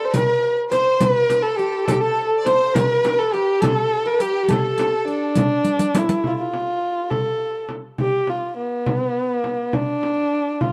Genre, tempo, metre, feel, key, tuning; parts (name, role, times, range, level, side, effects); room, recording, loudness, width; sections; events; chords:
Persian modal ensemble; 69 BPM (dotted quarters); 6/8; straight; A dastgah shur; A4 = 440 Hz
dark kamancheh; melody; 0.0-10.7 s; B3-48c to C5; -22 LUFS; equal
clear studio violin section; second line; 0.0-5.6 s; G4 to D5; -32 LUFS; equal
santur; second line; 0.0-7.6 s; G4 to D5; -30 LUFS; equal
frame drum; percussion; 0.1-10.7 s; -27 LUFS; equal
riq; percussion; 0.1-6.2 s; -26 LUFS; equal
light reverb; dark, warm production; -20 LUFS; mono
0.0-6.2 A section; 6.2-10.7 B section
drum fill 5.7-6.2